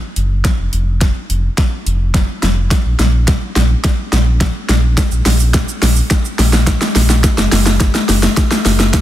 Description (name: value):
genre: dance-pop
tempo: 106 BPM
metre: 4/4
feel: straight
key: unclear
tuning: A4 = 441 Hz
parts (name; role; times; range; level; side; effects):
- sub bass with octave; bass; 0.2-9.0 s; F1 to Bb1; -14 LUFS; equal; sidechain pumping
- pop drum kit; drums; 0.2-9.0 s; hi-hat, kick drum, shaker, snare drum; -14 LUFS; equal; overdrive
room: little or no reverb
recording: dense, heavily limited modern master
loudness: -11 LUFS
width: side -13 dB against mid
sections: 0.0-9.0 A section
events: build-up 0.0-9.0; drum fill 0.0-9.0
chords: none